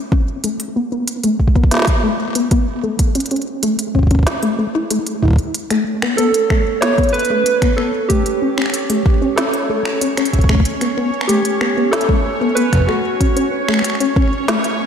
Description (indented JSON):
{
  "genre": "IDM",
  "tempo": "94 BPM",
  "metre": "4/4",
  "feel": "straight",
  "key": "unclear",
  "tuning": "A4 = 440 Hz",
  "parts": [
    { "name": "deep acid bass", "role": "arpeggios", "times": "0.0-14.9 s", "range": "A3 to E4", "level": "-19 LUFS", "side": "left 2 dB", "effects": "analog chorus, analog delay" },
    { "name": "electronic kick drum", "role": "drums", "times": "0.1-14.3 s", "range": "none", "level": "-15 LUFS", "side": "equal", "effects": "overdrive" },
    { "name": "organic electronic drum kit", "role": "drums", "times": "0.4-14.8 s", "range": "finger snaps, hi-hat, snare drum", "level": "-22 LUFS", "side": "equal", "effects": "overdrive, ping-pong delay" },
    { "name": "bubbling stepped-filter texture", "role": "texture", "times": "5.9-14.9 s", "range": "C#4 to C#5", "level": "-25 LUFS", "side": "right 2 dB", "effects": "chorus, built-in reverb" },
    { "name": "warbly lo-fi synth keys", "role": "melody", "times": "6.2-13.5 s", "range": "F#4 to C#5", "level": "-19 LUFS", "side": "right 2 dB", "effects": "chorus, analog delay" }
  ],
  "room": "wet lush hall reverb, RT60 3.0 s",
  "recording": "dreamy mix soaked in reverb",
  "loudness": "-14 LUFS",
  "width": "side -8 dB against mid",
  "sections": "0.0-14.9 A section",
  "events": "filter sweep on acid bass 0.0-14.9",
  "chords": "0.4 Asus2; 3.0 A; 5.5 Aadd9; 8.1 A7; 10.7 A9; 13.2 F#m (rootless)"
}